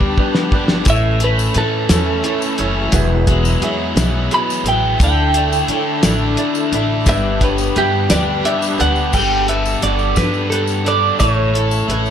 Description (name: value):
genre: folk rock and heartland rock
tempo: 58 BPM (dotted quarters)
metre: 6/8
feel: straight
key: unclear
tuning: A4 = 440 Hz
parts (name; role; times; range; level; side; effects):
- twelve-string electric guitar; melody; 0.0-12.1 s; G4 to B5; -19 LUFS; right 2 dB; plate reverb
- picked twelve-string acoustic guitar; accompaniment; 0.0-12.1 s; E2 to A4; -23 LUFS; left 7 dB; plate reverb
- musette accordion; sustained chords; 0.0-12.1 s; C#3 to B4; -28 LUFS; right 2 dB; plate reverb
- biting overdriven guitar; riff; 0.0-12.1 s; E2 to A4; -21 LUFS; equal; none
- upright bass; bass; 0.0-12.1 s; E1 to D3; -19 LUFS; equal; none
- cloth-damped thuddy drum kit; drums; 0.0-12.1 s; crash cymbal, hi-hat, kick drum, snare drum; -18 LUFS; equal; none
- bright baby grand piano; accompaniment; 0.2-12.1 s; F#3 to E5; -27 LUFS; right 8 dB; plate reverb
- tambourine; percussion; 0.9-12.1 s; none; -30 LUFS; left 14 dB; none
room: light reverb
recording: dark, warm production, lossy compression artefacts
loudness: -13 LUFS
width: side -9 dB against mid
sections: 0.0-9.1 A section; 9.1-12.1 B section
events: drum fill 0.0-0.9; clean electric guitar solo 0.0-9.1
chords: 0.0 G; 0.9 A; 2.9 Eadd9; 5.0 Dsus2; 7.1 G; 9.1 Gadd9; 11.2 A